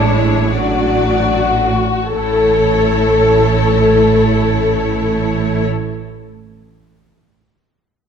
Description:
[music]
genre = classical, slow romantic movement for string orchestra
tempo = 39 BPM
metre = 4/4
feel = rubato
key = A major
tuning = A4 = 442 Hz
[part]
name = rich symphonic violin section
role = melody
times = 0.0-5.7 s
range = C#5 to D5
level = -23 LUFS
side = left 4 dB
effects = none
[part]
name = rich studio violin section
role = second line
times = 0.0-5.7 s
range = D4 to A4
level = -15 LUFS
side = left 2 dB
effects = none
[part]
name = rich symphonic viola section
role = accompaniment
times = 0.0-5.7 s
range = F#3 to E4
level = -20 LUFS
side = equal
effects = none
[part]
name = rich studio cello section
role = bass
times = 0.0-5.7 s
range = A2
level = -21 LUFS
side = right 3 dB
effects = none
[part]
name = rich symphonic double bass section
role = bass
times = 0.0-5.7 s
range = A1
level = -19 LUFS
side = right 3 dB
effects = none
[sound]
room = moderate scoring stage reverb, RT60 1.6 s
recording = dark, warm production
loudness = -12 LUFS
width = side -7 dB against mid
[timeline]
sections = 0.0-2.1 A section; 2.1-8.1 B section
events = slowing down 0.0-2.1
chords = 0.0 E7/A; 2.1 A

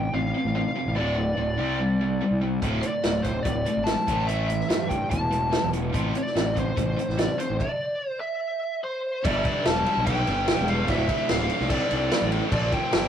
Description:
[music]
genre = classic rock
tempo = 145 BPM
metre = 4/4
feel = straight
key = D minor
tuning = A4 = 439 Hz
[part]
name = biting lead guitar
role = melody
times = 0.0-13.1 s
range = C5 to A5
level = -28 LUFS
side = equal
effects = overdrive, tape echo
[part]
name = tight distorted guitar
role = riff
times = 0.0-13.1 s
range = D2 to C4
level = -28 LUFS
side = equal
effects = distortion
[part]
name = fuzz fingered electric bass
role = bass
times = 0.0-13.1 s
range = D1 to G2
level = -28 LUFS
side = equal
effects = overdrive
[part]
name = vintage drum kit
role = drums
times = 2.6-13.0 s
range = crash cymbal, hi-hat, kick drum, snare drum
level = -27 LUFS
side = equal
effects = none
[sound]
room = moderate booth ambience, RT60 0.2 s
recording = rough rehearsal-room recording, lossy compression artefacts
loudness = -22 LUFS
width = side -9 dB against mid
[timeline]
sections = 0.0-9.3 A section; 9.3-13.1 B section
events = stop 7.6-9.3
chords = 0.0 F/A; 1.0 D5; 1.6 C5; 2.6 D5; 4.1 A5; 5.9 F/A; 7.6 N.C.; 9.3 G; 10.9 Dm; 12.5 Bb

